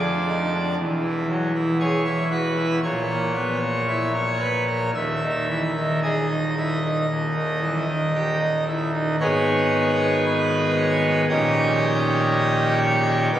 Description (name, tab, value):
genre	classical, chorale-style piece for pipe organ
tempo	57 BPM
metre	4/4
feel	rubato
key	unclear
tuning	A4 = 438 Hz
part	pipe organ, full organ	solo	0.0-13.4 s	D#1 to E5	-20 LUFS	equal	none
room	wet church reverb, RT60 3.6 s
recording	recorded on a phone in the room, studio ambience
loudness	-20 LUFS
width	side -11 dB against mid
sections	0.0-9.2 A section; 9.2-13.4 B section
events	none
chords	0.0 Dm/F; 0.8 E; 2.8 A#dim; 4.9 D#sus4; 7.1 D#; 9.2 G#m; 11.3 D#7/A#